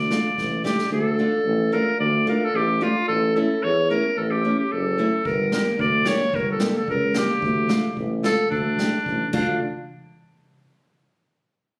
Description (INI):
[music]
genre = klezmer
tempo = 111 BPM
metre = 2/4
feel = straight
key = D harmonic minor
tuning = A4 = 443 Hz
[part]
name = bright clarinet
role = melody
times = 0.0-9.6 s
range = D4 to D5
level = -25 LUFS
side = equal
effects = plate reverb
[part]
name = breathy tuba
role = bass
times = 0.0-9.6 s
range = F#1 to E2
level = -28 LUFS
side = equal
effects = none
[part]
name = nylon-string guitar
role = accompaniment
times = 0.1-9.6 s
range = A3 to G4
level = -27 LUFS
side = equal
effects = none
[part]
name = street-band drum kit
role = drums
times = 0.1-0.9, 5.3-9.5 s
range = crash cymbal, kick drum, snare drum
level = -32 LUFS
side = equal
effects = none
[sound]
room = moderate studio reverb, RT60 0.6 s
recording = recorded on a phone in the room, club reverb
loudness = -22 LUFS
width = mono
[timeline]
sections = 0.9-9.6 A section; 9.6-10.7 B section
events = drum fill 0.4-0.9, 9.3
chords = 0.0 Dm; 3.1 A; 5.3 Gm; 7.4 Dm; 9.6 N.C.